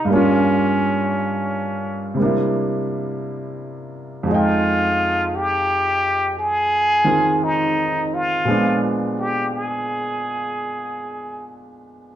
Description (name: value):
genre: jazz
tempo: 57 BPM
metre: 4/4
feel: swing 66% on 8ths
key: unclear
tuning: A4 = 444 Hz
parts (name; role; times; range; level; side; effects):
- trumpet with plunger mute; melody; 0.0-11.6 s; Db4 to Ab4; -20 LUFS; equal; none
- clear grand piano; accompaniment; 0.0-12.2 s; F2 to G5; -21 LUFS; right 1 dB; none
room: wet large studio reverb, RT60 0.9 s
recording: dark, warm production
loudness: -18 LUFS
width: side -11 dB against mid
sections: 0.0-12.2 A section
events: none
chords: 0.1 Gm7b5; 2.2 C7; 4.3 Fm9; 8.5 Bb7b9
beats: | 0.08 1.12 2.17 3.21 | 4.26 5.31 6.36 7.41 | 8.46 9.51 10.57 11.63